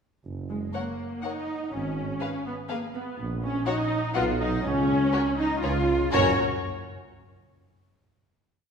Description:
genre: cinematic, playful, whimsical film cue.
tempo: 123 BPM.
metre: 3/4.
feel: straight.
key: F# major.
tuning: A4 = 440 Hz.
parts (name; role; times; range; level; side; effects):
mellow tuba; bass; 0.2-6.3 s; F#1 to C#2; -33 LUFS; right 3 dB; none.
rich studio double bass section; bass; 0.2-6.4 s; F#1 to F#2; -32 LUFS; right 2 dB; none.
dark studio viola section; accompaniment; 0.5-6.4 s; G#3 to E#4; -30 LUFS; left 1 dB; none.
dark studio cello section; bass; 0.5-6.4 s; G#3 to F#4; -31 LUFS; right 1 dB; none.
warm studio violin section; melody; 0.7-6.4 s; C#5 to F#5; -34 LUFS; left 5 dB; none.
warm studio violin section; second line; 0.7-6.4 s; F#4 to C#5; -32 LUFS; left 2 dB; none.
room: wet scoring stage reverb, RT60 1.7 s.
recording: heard from further back in the room.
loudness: -24 LUFS.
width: side -6 dB against mid.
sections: 0.2-6.1 A section; 6.1-7.6 final chord.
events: none.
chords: 0.2 F#; 1.7 Fdim/Ab (rootless); 3.2 F#/A# (rootless); 4.2 B; 4.6 N.C.; 5.6 C#; 6.1 F#5.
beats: | 0.25 0.74 1.24 | 1.72 2.21 2.69 | 3.18 3.67 4.15 | 4.64 5.13 5.63 | 6.13.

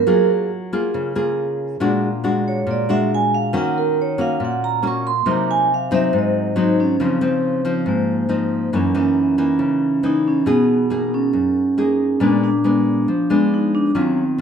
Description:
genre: bossa nova.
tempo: 138 BPM.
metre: 4/4.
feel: straight.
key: Bb minor, Db major from 7.0 s.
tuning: A4 = 439 Hz.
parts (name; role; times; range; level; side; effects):
vibraphone with medium hard mallets; melody; 0.0-14.4 s; Bb3 to Db6; -19 LUFS; right 3 dB; none.
nylon-string guitar; accompaniment; 0.0-14.4 s; Gb2 to Ab4; -19 LUFS; left 2 dB; none.
room: moderate large studio reverb, RT60 1.2 s.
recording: minimal, uncompressed stereo recording.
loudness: -16 LUFS.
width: side -7 dB against mid.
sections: 0.0-7.0 A section; 7.0-14.4 B section.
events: vibraphone solo 0.0-7.0.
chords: 0.1 Gbmaj9; 1.8 Bbaug7; 3.5 Ebm7; 5.3 Cm7b5; 6.1 Ab7; 7.0 Dbmaj9; 8.7 Gb6; 10.5 Cbmaj13; 12.2 Bb7b9.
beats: | 0.07 0.50 0.93 1.37 | 1.80 2.23 2.66 3.10 | 3.53 3.96 4.39 4.83 | 5.26 5.69 6.12 6.56 | 6.99 7.42 7.86 8.29 | 8.73 9.16 9.60 10.03 | 10.46 10.90 11.34 11.77 | 12.21 12.64 13.08 13.51 | 13.95 14.38.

